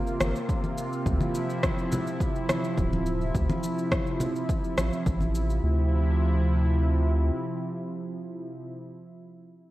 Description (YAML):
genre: sunset chillout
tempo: 105 BPM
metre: 4/4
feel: straight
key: D minor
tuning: A4 = 439 Hz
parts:
  - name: lush unison pad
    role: sustained chords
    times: 0.0-8.7 s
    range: C3 to F4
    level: -30 LUFS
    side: right 1 dB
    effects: chorus
  - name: electronic cabasa and rim click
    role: drums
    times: 0.1-5.6 s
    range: none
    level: -32 LUFS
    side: equal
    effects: overdrive, studio reverb
  - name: round analog bass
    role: bass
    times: 0.2-7.3 s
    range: D1 to D2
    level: -24 LUFS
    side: equal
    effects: none
  - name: congas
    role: percussion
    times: 0.2-5.3 s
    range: none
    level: -33 LUFS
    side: left 1 dB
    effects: none
  - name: electronic kick drum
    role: drums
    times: 0.5-5.2 s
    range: none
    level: -29 LUFS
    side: equal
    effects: overdrive, studio reverb
room: moderate recital hall reverb, RT60 1.6 s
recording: worn, warbling old tape, cassette tape, warbly pitch drift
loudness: -24 LUFS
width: side -16 dB against mid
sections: 0.0-5.6 A section; 5.6-7.9 B section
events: none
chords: 0.0 C7sus4; 1.1 Dm9